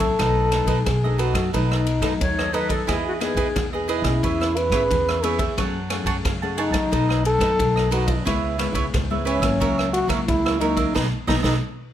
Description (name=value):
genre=samba and choro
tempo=89 BPM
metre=4/4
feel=straight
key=unclear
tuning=A4 = 440 Hz
part: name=mellow trombone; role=melody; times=0.0-11.5 s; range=C#4 to B4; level=-23 LUFS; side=left 1 dB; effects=none
part: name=cavaquinho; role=accompaniment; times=0.0-11.6 s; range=D#4 to A5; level=-27 LUFS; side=right 7 dB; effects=none
part: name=nylon-string guitar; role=accompaniment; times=0.0-11.6 s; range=F#2 to G#4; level=-28 LUFS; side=left 5 dB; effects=none
part: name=upright bass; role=bass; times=0.0-11.6 s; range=G#1 to F#2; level=-26 LUFS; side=equal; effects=none
part: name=swinging big-band drum kit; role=drums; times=0.0-11.6 s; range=kick drum, ride cymbal, rim click, snare drum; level=-26 LUFS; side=equal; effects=none
part: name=wooden flute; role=second line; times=2.2-3.7 s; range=F#4 to C#5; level=-26 LUFS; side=left 3 dB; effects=none
room=light reverb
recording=none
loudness=-19 LUFS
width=side -11 dB against mid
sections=0.0-11.9 A section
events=band accent 11.0-11.9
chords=0.2 B7; 2.9 Emaj7; 4.2 C#m7; 5.6 F#madd9; 6.9 B7; 8.3 C#m7; 9.6 F#7/C#; 11.0 B7